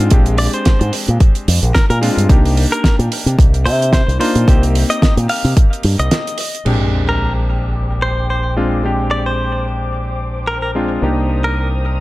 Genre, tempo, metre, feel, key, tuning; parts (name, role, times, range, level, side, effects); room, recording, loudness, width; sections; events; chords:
nu-disco, nu disco; 110 BPM; 4/4; swing 55% on 16ths; A4 = 440 Hz
warm electric grand piano; accompaniment; 0.0-12.0 s; Ab3 to G4; -21 LUFS; left 1 dB; digital delay
fingered electric bass with an envelope filter; bass; 0.0-12.0 s; Bb1 to C3; -16 LUFS; equal; tube saturation, sidechain pumping
damped 70s drum kit; drums; 0.1-6.8 s; crash cymbal, hi-hat, snare drum; -21 LUFS; right 2 dB
electronic kick drum; drums; 0.1-5.7 s; -11 LUFS; equal
direct-recorded clean electric guitar; melody; 0.4-11.7 s; Bb4 to F5; -22 LUFS; equal; digital delay
dark studio string section; sustained chords; 6.7-12.0 s; C5 to Eb6; -27 LUFS; left 3 dB; sidechain pumping, low-pass filter
sub drop; sound effects; 6.7-8.8 s; -22 LUFS; equal
small room ambience; -13 LUFS; side -18 dB against mid
0.0-6.7 A section; 6.7-12.0 B section
break 6.1-6.7; impact 6.7-8.8; filter sweep on string section 6.7-12.0
0.0 Bb13; 2.3 Cm7; 6.7 Bb13; 11.0 Cm7